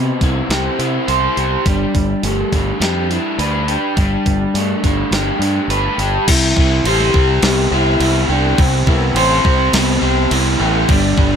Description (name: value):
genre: rock, shoegaze and dream pop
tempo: 104 BPM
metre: 4/4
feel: straight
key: C major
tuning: A4 = 440 Hz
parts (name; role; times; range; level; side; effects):
- dark French horn; melody; 0.0-11.4 s; B3 to G4; -22 LUFS; equal; slapback echo
- crunchy overdriven guitar; riff; 0.0-11.4 s; C3 to C5; -17 LUFS; equal; wide subtle chorus
- growling fingered electric bass; bass; 0.0-11.4 s; G1 to C3; -19 LUFS; equal; overdrive
- clean 12-bit digital drum machine; drums; 0.2-11.3 s; crash cymbal, hi-hat, kick drum, snare drum; -18 LUFS; equal; none
room: light reverb, digital ambience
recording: none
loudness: -13 LUFS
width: side -7 dB against mid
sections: 0.0-6.3 A section; 6.3-11.4 B section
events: none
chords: 0.0 Cmaj7; 1.7 Gadd9; 6.3 Cmaj7